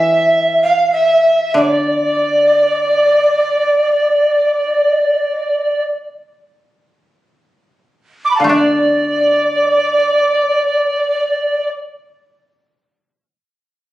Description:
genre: japanese traditional, Japanese chamber music.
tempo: 33-49 BPM.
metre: 4/4.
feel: rubato.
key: unclear.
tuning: A4 = 441 Hz.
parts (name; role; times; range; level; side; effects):
mellow long shakuhachi; melody; 0.0-11.7 s; D5 to F5; -15 LUFS; right 1 dB; none.
breathy alto recorder; second line; 0.0-11.7 s; D5 to D6; -15 LUFS; equal; none.
koto; accompaniment; 0.0-11.8 s; D3 to A4; -18 LUFS; left 1 dB; none.
room: light reverb.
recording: recorded on a phone in the room, studio reverb, compression.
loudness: -12 LUFS.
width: side -15 dB against mid.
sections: 0.0-8.5 A section; 8.5-13.9 B section.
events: slowing down 0.0-8.5.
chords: none.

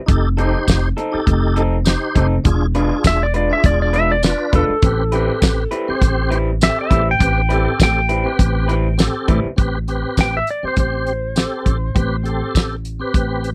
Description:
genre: straight-eighth soul blues.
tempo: 101 BPM.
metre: 4/4.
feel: swing 55% on 16ths.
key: A minor.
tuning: A4 = 441 Hz.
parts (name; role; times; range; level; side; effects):
tonewheel organ; accompaniment; 0.1-13.5 s; C4 to C5; -25 LUFS; equal; slow rotary speaker, chorus vibrato.
upright bass; bass; 0.1-13.5 s; E1 to A1; -21 LUFS; equal; none.
damped 70s drum kit; drums; 0.1-13.5 s; hi-hat, kick drum, snare drum, tambourine; -18 LUFS; equal; none.
electric guitar through a small old amp; stabs; 0.4-9.5 s; G3 to B4; -24 LUFS; equal; none.
clean lap steel guitar; melody; 3.1-12.5 s; A4 to G5; -23 LUFS; equal; none.
room: little or no reverb.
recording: dry, close 1970s-style studio recording.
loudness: -17 LUFS.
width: mono.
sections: 0.0-9.6 A section; 9.6-13.5 B section.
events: electric slide guitar solo 0.0-9.6.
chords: 0.1 F7; 2.5 E7b9; 4.8 Am9.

